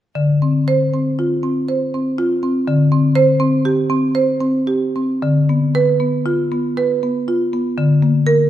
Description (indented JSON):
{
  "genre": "classical, contemporary piece for solo marimba",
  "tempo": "118 BPM",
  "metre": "5/4",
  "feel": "uneven beats, rubato",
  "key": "D minor",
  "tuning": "A4 = 440 Hz",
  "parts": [
    { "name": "marimba with medium hard mallets", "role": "solo", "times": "0.2-8.5 s", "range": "D3 to C5", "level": "-14 LUFS", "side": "equal", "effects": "none" }
  ],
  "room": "moderate recital hall reverb, RT60 1.5 s",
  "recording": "none",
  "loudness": "-14 LUFS",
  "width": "side -12 dB against mid",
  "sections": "0.2-5.2 A section; 5.2-8.5 B section",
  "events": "none",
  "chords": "0.2 Dm7; 2.7 D7sus4; 5.2 Dm6; 7.8 Bb/D"
}